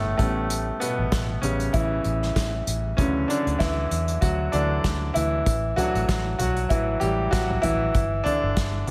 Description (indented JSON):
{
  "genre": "piano-driven pop",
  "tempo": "97 BPM",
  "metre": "4/4",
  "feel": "swing 56% on 16ths",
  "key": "A mixolydian",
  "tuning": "A4 = 439 Hz",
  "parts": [
    { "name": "bright concert grand piano", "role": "accompaniment", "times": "0.0-8.9 s", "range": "A2 to G4", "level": "-27 LUFS", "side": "equal", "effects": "none" },
    { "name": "vintage muted fingered electric bass", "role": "bass", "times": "0.0-8.9 s", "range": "G1 to E2", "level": "-30 LUFS", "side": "equal", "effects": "none" },
    { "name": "unplugged drum kit", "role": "drums", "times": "0.2-8.9 s", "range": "hi-hat, kick drum, snare drum, toms", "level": "-29 LUFS", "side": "equal", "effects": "none" }
  ],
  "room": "light reverb, small room ambience",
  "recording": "none",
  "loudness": "-24 LUFS",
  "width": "mono",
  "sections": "0.0-8.9 A section",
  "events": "grand piano solo 0.0-8.9",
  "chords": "0.2 A7; 3.0 Dadd9; 5.5 Asus4; 7.9 G5"
}